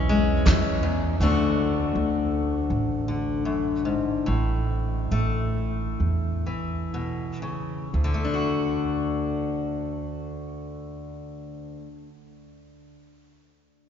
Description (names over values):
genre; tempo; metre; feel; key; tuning
acoustic folk duo or small band; 58-82 BPM; 4/4; straight; D lydian; A4 = 441 Hz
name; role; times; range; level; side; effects
fingerpicked steel-string acoustic guitar; accompaniment; 0.0-12.2 s; D2 to F#4; -26 LUFS; left 3 dB; none
upright bass; bass; 0.0-11.7 s; A1 to E2; -27 LUFS; right 1 dB; none
soft brush drum kit; drums; 0.5-0.6 s; kick drum, snare drum; -27 LUFS; right 1 dB; none
room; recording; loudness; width
wet cathedral reverb, RT60 5.7 s; recorded in a church or concert hall, nothing above 7.5 kHz; -23 LUFS; side -8 dB against mid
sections
0.0-1.2 A section; 1.2-7.9 B section; 7.9-12.1 C section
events
slowing down 1.2-7.9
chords
0.0 E6; 1.2 D; 4.3 A; 7.9 D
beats
0.46 | 1.20 1.94 2.69 3.47 | 4.27 5.11 5.99 6.92 | 7.93 8.97 10.01 11.05